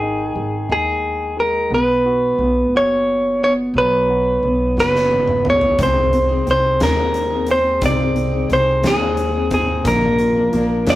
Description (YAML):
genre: six-eight pop ballad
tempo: 59 BPM (dotted quarters)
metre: 6/8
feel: straight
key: unclear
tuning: A4 = 442 Hz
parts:
  - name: direct-recorded clean electric guitar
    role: melody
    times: 0.0-11.0 s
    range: Ab4 to D5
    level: -17 LUFS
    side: equal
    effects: none
  - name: clear concert grand piano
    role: accompaniment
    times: 0.0-11.0 s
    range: Eb3 to F#4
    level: -22 LUFS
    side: equal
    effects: none
  - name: upright bass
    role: bass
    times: 0.0-11.0 s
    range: F#1 to F2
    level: -23 LUFS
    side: equal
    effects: none
  - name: huge arena drum kit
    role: drums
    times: 4.8-11.0 s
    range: hi-hat, kick drum, snare drum, toms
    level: -25 LUFS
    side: equal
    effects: none
  - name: picked steel-string acoustic guitar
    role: arpeggios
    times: 5.8-11.0 s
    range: Bb2 to Bb4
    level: -24 LUFS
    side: left 4 dB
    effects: none
room: moderate studio reverb, RT60 0.6 s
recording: rough rehearsal-room recording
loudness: -15 LUFS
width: side -15 dB against mid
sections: 0.0-11.0 A section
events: drum fill 4.8-5.8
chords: 0.0 Ab5; 1.7 Bsus2; 5.8 Ab/C; 9.9 Bb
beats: 0.69 | 1.71 2.73 | 3.75 4.76 | 5.78 6.80 | 7.82 8.84 | 9.85 10.87